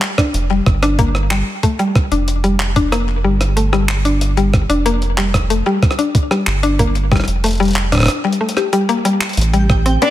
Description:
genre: IDM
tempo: 93 BPM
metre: 4/4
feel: straight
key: unclear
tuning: A4 = 440 Hz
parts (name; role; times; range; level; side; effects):
- jungle sampler-style drum kit; drums; 0.0-10.1 s; handclaps, hi-hat, rim click; -21 LUFS; equal; small room ambience, ping-pong delay
- mallet-like synth pluck; arpeggios; 0.2-10.1 s; G3 to G4; -17 LUFS; left 3 dB; chorus, cassette tape, digital delay
- electronic kick drum; drums; 0.2-9.8 s; none; -14 LUFS; right 1 dB; small room ambience
- round analog bass; bass; 0.3-10.0 s; F1 to A1; -17 LUFS; right 1 dB; none
- twinkling granular texture; texture; 9.5-10.1 s; G4 to G5; -24 LUFS; right 5 dB; built-in reverb
- rich cello; melody; 10.0-10.1 s; D4; -11 LUFS; left 1 dB; none
room: light reverb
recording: none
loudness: -13 LUFS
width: side -13 dB against mid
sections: 0.0-10.1 A section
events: kick drops out 8.1-9.4; drum fill 9.1-9.4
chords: 0.0 G7(no3); 9.4 Am9

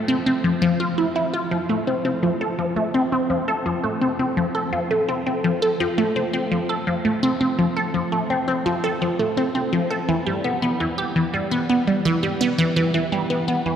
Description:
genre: ambient, sequencer-driven space music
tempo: 84 BPM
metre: 4/4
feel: straight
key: unclear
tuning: A4 = 440 Hz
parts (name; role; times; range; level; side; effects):
- resonant blip pluck; solo; 0.1-13.7 s; E3 to A4; -19 LUFS; equal; phaser, tape echo
room: wet cathedral reverb, RT60 5.4 s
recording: in a vast, echoing space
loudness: -19 LUFS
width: side -8 dB against mid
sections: 0.0-13.8 A section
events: none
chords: none

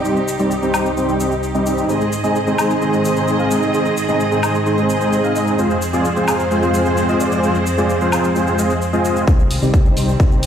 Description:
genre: EDM, festival progressive house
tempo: 130 BPM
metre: 4/4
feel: straight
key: C minor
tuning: A4 = 441 Hz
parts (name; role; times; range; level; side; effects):
- rich studio string section; sustained chords; 0.0-10.5 s; C2 to Eb5; -21 LUFS; equal; sidechain pumping
- dense compressed supersaw; riff; 0.0-10.5 s; G3 to F5; -17 LUFS; equal; sidechain pumping, low-pass filter, tape echo
- electronic shaker, woodblock and hi-hat; drums; 0.0-10.5 s; none; -26 LUFS; left 2 dB; studio ambience
- fat analog bass; bass; 9.3-10.5 s; C2; -20 LUFS; left 1 dB; sidechain pumping
- electronic kick drum; drums; 9.3-10.3 s; none; -13 LUFS; equal; studio ambience
room: moderate digital room reverb, RT60 1.0 s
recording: played on a big sound system in a bare room, stone room reverb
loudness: -14 LUFS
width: side -8 dB against mid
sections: 0.0-9.3 A section; 9.3-10.5 B section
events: build-up 9.3-10.5; filter sweep on supersaw synth 9.3-10.5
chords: 0.0 Cm; 1.9 Ab; 5.6 Fm; 9.3 Cm

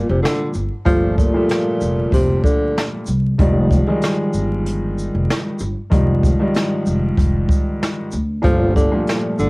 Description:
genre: hip hop, boom-bap hip-hop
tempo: 95 BPM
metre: 4/4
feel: swing 55% on 16ths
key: G phrygian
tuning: A4 = 438 Hz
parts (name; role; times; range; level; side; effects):
- breathy tenor saxophone; melody; 0.0-2.9, 8.4-9.5 s; Bb2 to F3; -20 LUFS; equal; high-pass filter, low-pass filter, cassette tape
- dark baby grand piano; accompaniment; 0.0-9.5 s; Ab2 to A3; -20 LUFS; equal; cassette tape, high-pass filter, low-pass filter
- upright bass; bass; 0.0-9.5 s; F1 to D2; -20 LUFS; equal; none
- jazz brush drum kit; drums; 0.3-9.5 s; hi-hat, kick drum, shaker, snare drum; -19 LUFS; equal; cassette tape
room: little or no reverb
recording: home recording on cassette, vinyl crackle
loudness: -15 LUFS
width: side -28 dB against mid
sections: 0.0-9.5 A section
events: none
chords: 0.0 Gm9; 3.4 Fm9; 8.4 Gm9

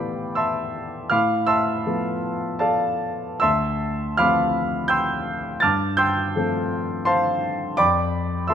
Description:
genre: classical, impressionist solo piano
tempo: 70-85 BPM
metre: 3/4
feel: rubato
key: unclear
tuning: A4 = 440 Hz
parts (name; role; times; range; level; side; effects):
- warm grand piano; solo; 0.0-8.5 s; D2 to A6; -20 LUFS; equal; none
room: moderate recital hall reverb, RT60 1.7 s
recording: minimal, uncompressed stereo recording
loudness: -20 LUFS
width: side -8 dB against mid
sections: 0.0-8.5 A section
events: none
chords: 0.0 Am9; 1.1 Fmaj7#11/A; 3.4 Dm9; 5.6 G9sus4; 7.8 Fmaj7(b5, no3)

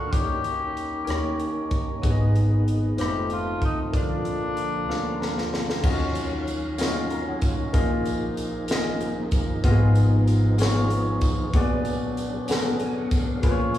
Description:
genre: slow gospel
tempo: 63 BPM (dotted quarters)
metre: 6/8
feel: straight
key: Eb minor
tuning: A4 = 439 Hz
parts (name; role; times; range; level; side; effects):
- raspy tenor saxophone; melody; 0.0-5.5 s; D4 to G4; -31 LUFS; left 2 dB; none
- warm grand piano; accompaniment; 0.0-13.8 s; Ab2 to Bb5; -28 LUFS; left 2 dB; none
- percussive tonewheel organ; sustained chords; 0.0-13.8 s; D3 to Ab5; -31 LUFS; equal; slow rotary speaker, chorus vibrato
- pipe organ, stopped flute; sustained chords; 0.0-5.8 s; Bb4 to Cb6; -40 LUFS; left 3 dB; none
- upright bass; bass; 0.0-13.8 s; F1 to Eb2; -26 LUFS; equal; none
- crisp fusion drum kit; drums; 0.1-13.8 s; crash cymbal, hi-hat, kick drum, rim click, snare drum; -26 LUFS; equal; none
- tambourine; percussion; 6.2-13.8 s; none; -43 LUFS; right 4 dB; none
room: wet church reverb, RT60 2.9 s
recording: band playing live in one room, small room ambience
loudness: -21 LUFS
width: side -12 dB against mid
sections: 0.0-5.8 A section; 5.8-13.8 B section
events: drum fill 4.9-5.8; grand piano fill 4.9-5.8; tonewheel organ fill 12.5-13.4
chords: 0.1 Eb7; 2.0 Abm; 3.0 F7; 3.9 Bb; 5.8 Ebm9; 7.7 Bb7sus4; 9.6 Fm7b5/Ab; 11.5 Bb7b9b13

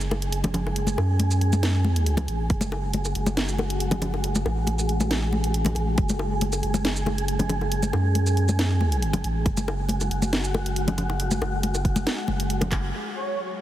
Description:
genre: deep dubstep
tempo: 138 BPM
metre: 4/4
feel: half-time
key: F# minor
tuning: A4 = 441 Hz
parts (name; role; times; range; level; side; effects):
- saturated sub bass; bass; 0.0-12.9 s; F#1 to F#2; -25 LUFS; equal; none
- garage drum kit; drums; 0.0-12.8 s; handclaps, hi-hat, shaker, snare drum; -30 LUFS; right 1 dB; low-pass filter on hats, low-pass filter on perc, low-pass filter on snare
- wind-like tuned noise texture; texture; 0.0-13.6 s; F#3 to G#4; -30 LUFS; equal; built-in reverb
- congas and bongos; percussion; 0.1-12.8 s; none; -29 LUFS; left 2 dB; dub echo
- electronic kick drum; drums; 2.5-2.6, 6.0-6.1, 9.5-12.8 s; none; -24 LUFS; equal; none
- breathy flute-like synth lead; melody; 13.2-13.5 s; C#5; -28 LUFS; right 2 dB; ensemble chorus
room: light reverb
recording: heavily compressed radio sound, multiband compression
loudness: -22 LUFS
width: side -13 dB against mid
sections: 0.0-12.9 A section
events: drum fill 12.7; band accent 12.7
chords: 0.0 F#madd9; 12.9 F#5

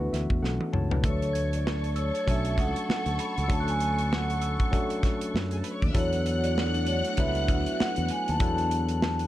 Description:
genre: lush 1970s-style soul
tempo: 98 BPM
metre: 4/4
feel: swing 58% on 16ths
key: unclear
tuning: A4 = 440 Hz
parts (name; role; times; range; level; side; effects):
- vibraphone with soft mallets; melody; 0.0-9.3 s; C#5 to A5; -32 LUFS; right 1 dB; tape echo
- barky tine electric piano; accompaniment; 0.0-9.3 s; E3 to A5; -32 LUFS; left 2 dB; overdrive
- fingered electric bass; bass; 0.0-9.3 s; B1 to F#2; -29 LUFS; equal; none
- modern studio drum kit; drums; 0.1-9.3 s; hi-hat, kick drum, snare drum, toms; -29 LUFS; equal; none
- warm studio string section; second line; 1.0-9.3 s; G#4 to F#6; -35 LUFS; left 2 dB; none
- glockenspiel with rubber mallets; texture; 1.3-6.2 s; B5 to G#6; -42 LUFS; equal; none
- string machine, violins; sustained chords; 5.9-9.3 s; A3 to F#4; -37 LUFS; equal; phaser, ensemble chorus
room: studio ambience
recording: dark, warm production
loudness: -24 LUFS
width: side -14 dB against mid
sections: 0.0-1.0 A section; 1.0-9.3 B section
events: tine electric piano fill 0.0-1.0; drum fill 0.4-1.0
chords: 0.0 E9sus4; 1.0 Dmaj7; 6.0 E9sus4

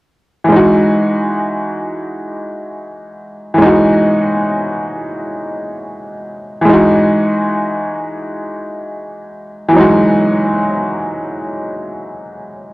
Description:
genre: hip hop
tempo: free time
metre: none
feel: none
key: E major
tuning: A4 = 440 Hz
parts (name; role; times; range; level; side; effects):
- clear upright piano; solo; 0.4-12.7 s; E3 to F#4; -13 LUFS; equal; cassette tape
room: wet spring reverb, RT60 2.6 s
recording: dry, gritty hardware recording, cassette tape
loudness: -12 LUFS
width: side -20 dB against mid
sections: 0.5-6.7 A section; 6.7-12.7 B section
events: none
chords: 0.5 Emaj9

